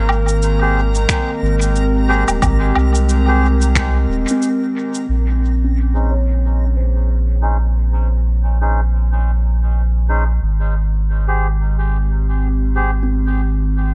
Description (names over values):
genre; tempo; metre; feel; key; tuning
ambient dub; 90 BPM; 4/4; swing 58% on 16ths; Bb dorian; A4 = 436 Hz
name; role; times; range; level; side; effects
warbly tape-like pad; sustained chords; 0.0-13.9 s; Eb3 to Bb4; -26 LUFS; equal; chorus, built-in reverb
soft dub sub bass; bass; 0.0-13.9 s; Eb1 to C2; -18 LUFS; equal; none
backwards swelling texture; texture; 0.0-5.1 s; Bb5; -36 LUFS; equal; built-in reverb
electronic woodblock, cabasa and finger snaps; drums; 0.1-5.1 s; none; -25 LUFS; equal; dub echo
melodica; stabs; 0.6-12.9 s; Db4 to C5; -27 LUFS; equal; low-pass filter, dub echo
electronic kick drum; drums; 1.1-3.9 s; none; -23 LUFS; equal; overdrive
kalimba; arpeggios; 4.3-13.9 s; C4 to Db5; -28 LUFS; equal; low-pass filter, dub echo
room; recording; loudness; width
little or no reverb; nothing above 11.0 kHz; -17 LUFS; mono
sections
0.0-5.1 A section; 5.1-13.9 B section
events
filter sweep on ambient pad 5.1-13.9; filter sweep on melodica 5.1-13.9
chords
0.0 Abmaj7; 5.1 Bbm11; 10.4 Abmaj7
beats
0.42 1.09 1.75 | 2.42 3.09 3.75 4.42 | 5.09 5.75 6.42 7.09 | 7.75 8.42 9.09 9.75 | 10.42 11.09 11.75 12.42 | 13.09 13.75